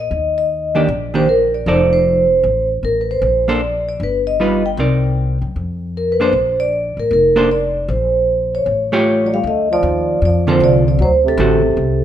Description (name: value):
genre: jazz, small-group swing and bop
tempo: 154 BPM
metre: 4/4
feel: swing 64% on 8ths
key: Bb major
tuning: A4 = 439 Hz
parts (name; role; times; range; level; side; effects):
- vibraphone with medium mallets; melody; 0.0-12.0 s; A4 to G5; -16 LUFS; right 1 dB; none
- upright bass; bass; 0.0-12.0 s; F1 to Gb2; -20 LUFS; left 1 dB; none
- hollow-body jazz guitar; accompaniment; 0.7-11.6 s; D3 to D5; -18 LUFS; right 2 dB; none
- breathy trombone; second line; 9.2-12.0 s; C3 to A3; -20 LUFS; right 4 dB; none
room: light reverb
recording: minimal, uncompressed stereo recording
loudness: -13 LUFS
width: side -10 dB against mid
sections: 0.0-9.4 A section; 9.4-12.0 B section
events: none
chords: 0.1 Ebmaj7; 1.7 F6; 3.2 Bbmaj9; 4.0 Gaug7; 4.8 Cm9; 5.6 Bbmaj9; 8.7 A7b13; 9.4 Dm7; 11.0 D7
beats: | 0.11 0.50 0.89 1.27 | 1.66 2.05 2.44 2.83 | 3.22 3.61 4.00 4.39 | 4.78 5.17 5.56 5.95 | 6.33 6.72 7.11 7.50 | 7.89 8.28 8.67 9.06 | 9.45 9.83 10.22 10.61 | 11.00 11.39 11.77